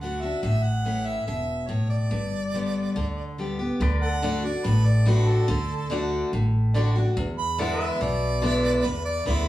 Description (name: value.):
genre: honky-tonk and classic country.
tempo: 143 BPM.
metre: 4/4.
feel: straight.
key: D major.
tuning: A4 = 440 Hz.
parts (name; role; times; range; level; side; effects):
clear harmonica; second line; 0.0-9.5 s; A4 to B5; -30 LUFS; right 2 dB; none.
picked steel-string acoustic guitar; accompaniment; 0.0-9.5 s; E2 to G4; -24 LUFS; left 1 dB; none.
upright bass; bass; 0.0-9.5 s; E1 to E2; -28 LUFS; right 1 dB; none.
pedal steel guitar; sustained chords; 3.8-9.5 s; A4 to E5; -34 LUFS; left 1 dB; none.
clear concert grand piano; accompaniment; 4.2-9.5 s; D4 to D5; -34 LUFS; equal; none.
room: wet small room reverb, RT60 0.6 s.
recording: band playing live in one room, studio reverb.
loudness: -22 LUFS.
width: side -14 dB against mid.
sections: 0.0-3.8 A section; 3.8-9.5 B section.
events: harmonica solo 0.0-3.8, 3.8-9.5.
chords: 0.4 A; 2.1 G; 3.8 D; 7.2 E7.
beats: 0.01 | 0.43 0.85 1.28 1.70 | 2.12 2.54 2.96 3.38 | 3.80 4.22 4.64 5.06 | 5.48 5.90 6.32 6.74 | 7.16 7.58 8.00 8.42 | 8.84 9.27.